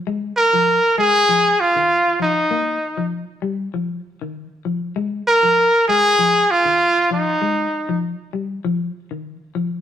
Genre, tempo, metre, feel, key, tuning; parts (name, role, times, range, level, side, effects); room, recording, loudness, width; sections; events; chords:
afrobeat; 98 BPM; 4/4; swing 54% on 16ths; F minor; A4 = 438 Hz
semi-hollow electric guitar; arpeggios; 0.1-9.8 s; Eb3 to Bb3; -25 LUFS; left 4 dB
clear trumpet; melody; 0.4-8.0 s; Eb4 to Bb4; -14 LUFS; equal
moderate stone room reverb, RT60 1.3 s; rough rehearsal-room recording; -16 LUFS; side -9 dB against mid
0.0-9.8 A section
0.1 Ab5; 5.0 Fm7